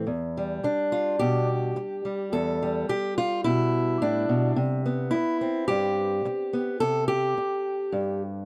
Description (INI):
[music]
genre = folk, solo fingerstyle acoustic guitar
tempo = 107 BPM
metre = 4/4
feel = straight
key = unclear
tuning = A4 = 442 Hz
[part]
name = fingerpicked acoustic archtop guitar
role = solo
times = 0.0-8.5 s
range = E2 to A4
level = -26 LUFS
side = equal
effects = none
[sound]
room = light reverb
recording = dark, warm production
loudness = -26 LUFS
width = mono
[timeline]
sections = 0.1-8.5 A section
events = none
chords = 0.1 Em7; 4.6 Cmaj7